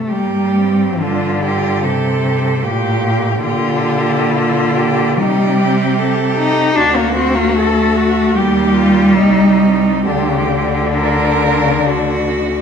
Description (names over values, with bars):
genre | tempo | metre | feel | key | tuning
classical, lyrical piece for cello ensemble | 72 BPM | 4/4 | uneven beats, rubato | G minor | A4 = 439 Hz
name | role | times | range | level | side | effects
rich cello | second line | 0.0-12.6 s | Eb4 to Bb4 | -20 LUFS | right 4 dB | none
rich cello | accompaniment | 0.0-12.6 s | Bb2 to Eb4 | -15 LUFS | left 1 dB | none
rich cello | melody | 0.1-12.6 s | Bb3 to A4 | -21 LUFS | left 7 dB | none
rich cello | bass | 0.1-12.6 s | C2 to C3 | -20 LUFS | right 2 dB | none
room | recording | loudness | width
wet recital hall reverb, RT60 1.6 s | minimal, uncompressed stereo recording | -12 LUFS | side -7 dB against mid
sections
0.1-12.6 A section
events
none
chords
0.1 Gm; 3.5 Gm/Bb; 5.2 Cm6; 6.8 D; 8.3 Cm/Eb; 10.1 Gm/D